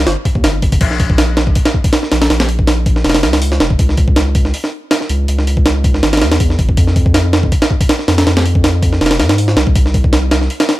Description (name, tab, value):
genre	drum and bass, jungle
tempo	161 BPM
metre	4/4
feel	swing 54% on 16ths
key	Bb dorian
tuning	A4 = 440 Hz
part	saturated sub bass	bass	0.0-10.5 s	F1 to Ab2	-14 LUFS	equal	none
part	breakbeat sampler-style drum kit	drums	0.1-10.8 s	crash cymbal, hi-hat, kick drum, snare drum	-12 LUFS	equal	none
room	little or no reverb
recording	none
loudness	-10 LUFS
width	side -16 dB against mid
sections	0.8-10.8 A section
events	drop 0.8-10.8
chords	none